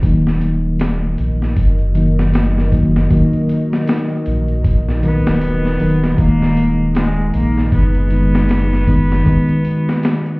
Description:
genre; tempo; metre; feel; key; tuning
trip hop; 78 BPM; 4/4; swing 58% on 16ths; Eb minor; A4 = 440 Hz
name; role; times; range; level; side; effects
mellow reed electric piano; accompaniment; 0.0-10.4 s; Eb3 to Bb4; -17 LUFS; equal; harmonic tremolo, vintage 12-bit sampler grit
dark analog pad; sustained chords; 0.4-10.4 s; Ab3 to Eb5; -27 LUFS; equal; chorus, vintage 12-bit sampler grit
warm sub bass; bass; 0.0-9.2 s; Eb1 to Bb1; -17 LUFS; equal; none
boom bap sampler-style drum kit; drums; 0.0-10.4 s; hi-hat, kick drum, snare drum; -18 LUFS; equal; vintage 12-bit sampler grit
rich cello; melody; 5.0-10.4 s; Ab3 to Cb4; -21 LUFS; left 1 dB; none
room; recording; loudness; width
little or no reverb; heard muffled through a wall, club reverb, vinyl crackle, EQ; -13 LUFS; side -26 dB against mid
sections
0.0-10.4 A section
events
none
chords
0.0 Ebm; 6.2 Abm/Eb

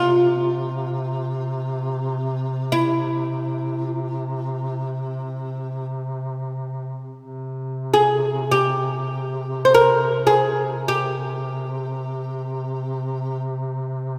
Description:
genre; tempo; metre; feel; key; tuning
caucasian folk, Caucasian lament; free time; none; none; C major; A4 = 443 Hz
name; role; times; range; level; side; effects
oud; melody; 0.0-13.4 s; E4 to C5; -21 LUFS; equal; none
warm duduk; drone; 0.0-14.2 s; C3; -28 LUFS; equal; none
room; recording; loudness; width
wet church reverb, RT60 3.6 s; recorded in a church or concert hall; -23 LUFS; mono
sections
0.0-14.2 A section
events
none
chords
none

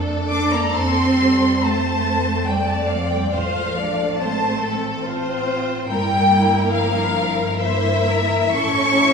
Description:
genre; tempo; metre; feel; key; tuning
classical, slow romantic movement for string orchestra; 70 BPM; 3/4; rubato; unclear; A4 = 441 Hz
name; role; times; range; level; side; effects
rich studio violin section; melody; 0.0-9.1 s; A4 to E5; -25 LUFS; left 3 dB; none
dark studio viola section; accompaniment; 0.0-9.1 s; G3 to F4; -25 LUFS; right 1 dB; none
rich studio double bass section; bass; 0.0-9.1 s; G1 to F2; -26 LUFS; right 2 dB; none
warm symphonic violin section; second line; 0.3-9.1 s; E5 to D6; -21 LUFS; left 2 dB; none
warm studio cello section; bass; 0.3-9.1 s; E3 to D4; -22 LUFS; right 2 dB; none
room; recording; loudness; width
wet recital hall reverb, RT60 1.5 s; recorded in a church or concert hall, small room ambience; -17 LUFS; side -5 dB against mid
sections
0.0-9.1 A section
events
none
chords
0.0 Dm/F; 0.8 F; 3.3 F/A; 5.9 Edim/G; 8.5 A

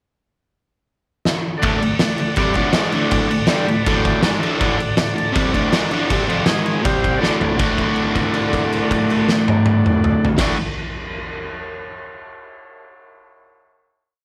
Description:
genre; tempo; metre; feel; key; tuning
garage rock duo or trio; 160 BPM; 4/4; straight; D mixolydian; A4 = 440 Hz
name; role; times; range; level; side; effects
oversized low-tuned drum kit; drums; 1.3-10.5 s; crash cymbal, kick drum, snare drum, toms; -22 LUFS; equal; none
overdriven combo organ; sustained chords; 1.6-10.6 s; G4 to B5; -27 LUFS; equal; none
crunchy overdriven guitar; riff; 1.6-10.6 s; D2 to F#4; -21 LUFS; equal; none
room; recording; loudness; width
studio ambience; none; -18 LUFS; mono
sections
0.1-1.6 pickup bar; 1.6-7.6 riff; 7.6-10.6 final chord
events
drum fill 1.3-1.6, 7.2-7.6; transistor combo organ fill 3.5-4.6; held note 7.6-10.4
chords
0.1 N.C.; 1.6 D; 6.5 G#5; 6.8 C5; 7.2 D

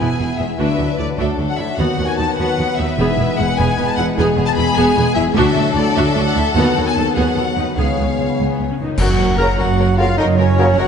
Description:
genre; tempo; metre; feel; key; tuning
cinematic, heroic adventure film score; 100 BPM (dotted quarters); 6/8; straight; E major; A4 = 440 Hz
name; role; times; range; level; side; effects
warm symphonic violin section; melody; 0.0-10.9 s; Db5 to B5; -23 LUFS; left 4 dB; none
warm symphonic violin section; second line; 0.0-10.9 s; F#4 to C#5; -25 LUFS; left 3 dB; none
warm symphonic viola section; accompaniment; 0.0-10.9 s; F#3 to Bb4; -22 LUFS; right 1 dB; none
dark French horn section; sustained chords; 0.0-10.7 s; E3 to Gb4; -23 LUFS; left 3 dB; none
concert harp; arpeggios; 0.0-10.9 s; Gb2 to E6; -24 LUFS; left 6 dB; none
rich symphonic double bass section; bass; 0.0-10.9 s; E1 to D#2; -21 LUFS; right 3 dB; none
warm symphonic cello section; bass; 0.0-10.9 s; C#2 to Gb2; -23 LUFS; right 3 dB; none
cymbal swell, clash cymbals and concert bass drum; percussion; 6.5-9.7 s; none; -22 LUFS; equal; none
hollow small flute group; second line; 9.0-10.9 s; Db5 to Bb5; -21 LUFS; right 2 dB; none
warm clarinet; second line; 9.0-10.9 s; Db4 to Bb4; -21 LUFS; right 1 dB; none
clear trombone section; sustained chords; 9.4-10.7 s; Db3 to Gb3; -25 LUFS; right 3 dB; none
room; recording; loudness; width
wet concert hall reverb, RT60 1.9 s; nothing above 11.0 kHz; -14 LUFS; side -7 dB against mid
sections
0.0-9.0 A section; 9.0-10.9 B section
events
band accent 9.0-9.4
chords
0.0 E; 0.6 Dadd9; 1.8 B/D#; 3.0 E; 5.4 Dadd9; 6.5 B/D#; 7.8 C#7; 9.0 Gb

